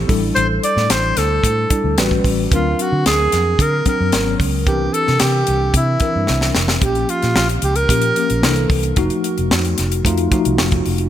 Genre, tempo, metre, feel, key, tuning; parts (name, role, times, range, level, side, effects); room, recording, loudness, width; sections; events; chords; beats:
polished 1980s jazz-funk pop; 111 BPM; 4/4; straight; F major; A4 = 441 Hz
mellow tine electric piano; accompaniment; 0.0-11.1 s; E3 to B4; -21 LUFS; left 2 dB; medium stereo tremolo, analog chorus
vintage muted fingered electric bass; bass; 0.0-11.1 s; F1 to D3; -20 LUFS; right 1 dB
tight funk drum kit; drums; 0.1-11.1 s; hi-hat, kick drum, snare drum; -19 LUFS; equal
breathy alto saxophone; melody; 0.4-8.7 s; E4 to D5; -19 LUFS; right 1 dB; ping-pong delay
light reverb, small room ambience; bright 1980s-style digital production; -14 LUFS; side -11 dB against mid
0.0-6.8 A section; 6.8-11.1 B section
drum fill 6.3-6.8
0.1 A7sus4; 2.0 A13; 2.5 D7alt; 4.1 Abm11; 4.7 C9; 6.8 Bbm6; 8.4 C13; 9.0 F7b9
| 0.36 0.90 1.43 1.97 | 2.51 3.05 3.59 4.13 | 4.66 5.20 5.74 6.28 | 6.82 7.36 7.90 8.44 | 8.97 9.51 10.05 10.59